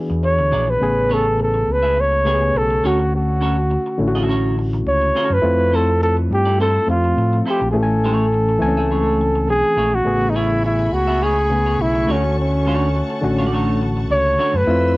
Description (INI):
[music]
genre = soul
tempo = 104 BPM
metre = 4/4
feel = swing 54% on 16ths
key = A major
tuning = A4 = 440 Hz
[part]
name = barky reed electric piano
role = accompaniment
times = 0.0-15.0 s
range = C#3 to G#5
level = -22 LUFS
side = left 2 dB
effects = overdrive, harmonic tremolo
[part]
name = semi-hollow electric guitar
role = riff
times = 0.1-14.6 s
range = A3 to E5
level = -26 LUFS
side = right 2 dB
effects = none
[part]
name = overdriven fingered electric bass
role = bass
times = 0.1-15.0 s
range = A1 to A2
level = -20 LUFS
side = equal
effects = none
[part]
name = breathy flugelhorn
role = melody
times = 0.2-15.0 s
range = C#4 to C#5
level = -18 LUFS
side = equal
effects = cassette tape
[part]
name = rich studio string section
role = sustained chords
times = 10.1-15.0 s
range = A3 to E6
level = -31 LUFS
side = left 1 dB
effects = none
[sound]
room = light reverb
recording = home recording on cassette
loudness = -15 LUFS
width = side -20 dB against mid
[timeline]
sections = 0.0-10.1 A section; 10.1-15.0 A section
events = none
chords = 0.0 E7; 0.8 Amaj9; 2.8 Dmaj7; 5.4 Fmaj7; 7.7 Amaj7; 10.1 Amaj9; 12.1 Dmaj7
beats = 0.23 | 0.81 1.39 1.97 2.55 | 3.13 3.70 4.28 4.86 | 5.44 6.01 6.59 7.17 | 7.75 8.33 8.90 9.48 | 10.06 10.64 11.21 11.79 | 12.37 12.95 13.53 14.10 | 14.68